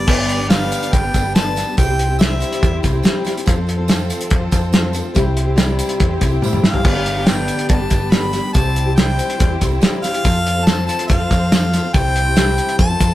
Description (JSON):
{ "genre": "folk rock and heartland rock", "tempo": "142 BPM", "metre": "4/4", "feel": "straight", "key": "unclear", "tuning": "A4 = 440 Hz", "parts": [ { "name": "clear harmonica", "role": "melody", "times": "0.0-2.8, 6.6-13.1 s", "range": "D5 to B5", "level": "-22 LUFS", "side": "left 1 dB", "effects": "none" }, { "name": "picked steel-string acoustic guitar", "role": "accompaniment", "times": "0.0-13.1 s", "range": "G2 to B4", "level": "-22 LUFS", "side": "left 2 dB", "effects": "none" }, { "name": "rich chamber string section", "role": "sustained chords", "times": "0.0-13.1 s", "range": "B3 to C5", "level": "-30 LUFS", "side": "left 1 dB", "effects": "none" }, { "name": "picked electric bass", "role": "bass", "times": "0.0-13.1 s", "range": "G1 to A2", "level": "-21 LUFS", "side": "equal", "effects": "none" }, { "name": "cloth-damped thuddy drum kit", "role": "drums", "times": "0.1-13.1 s", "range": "crash cymbal, hi-hat, kick drum, snare drum, toms", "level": "-16 LUFS", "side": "equal", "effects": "none" }, { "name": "tambourine", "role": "percussion", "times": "0.1-13.1 s", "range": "none", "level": "-36 LUFS", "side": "right 5 dB", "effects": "none" } ], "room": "moderate stone room reverb, RT60 1.4 s", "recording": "rough rehearsal-room recording", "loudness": "-14 LUFS", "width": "side -14 dB against mid", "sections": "0.1-13.1 A section", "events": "drum fill 6.4-6.9", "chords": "0.1 G; 1.8 C; 3.5 F; 5.2 C; 6.9 G; 8.6 C; 10.2 F; 11.9 C", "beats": "| 0.08 0.51 0.93 1.35 | 1.78 2.20 2.62 3.05 | 3.47 3.89 4.32 4.74 | 5.16 5.59 6.01 6.43 | 6.86 7.28 7.70 8.13 | 8.55 8.97 9.40 9.82 | 10.24 10.67 11.09 11.51 | 11.94 12.36 12.79" }